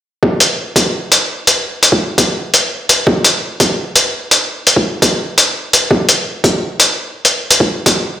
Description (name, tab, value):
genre	half-time drum and bass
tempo	169 BPM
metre	4/4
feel	swing 55% on 16ths, half-time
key	none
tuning	none
part	electronic kick drum	drums	0.2-7.9 s	none	-15 LUFS	equal	overdrive, high-pass filter on kick, high-pass filter on room
part	electronic hi-hat	drums	0.4-7.9 s	none	-11 LUFS	equal	overdrive
room	light reverb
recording	played on a big sound system in a bare room, stone room reverb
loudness	-10 LUFS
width	side -12 dB against mid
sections	0.2-8.2 A section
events	none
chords	none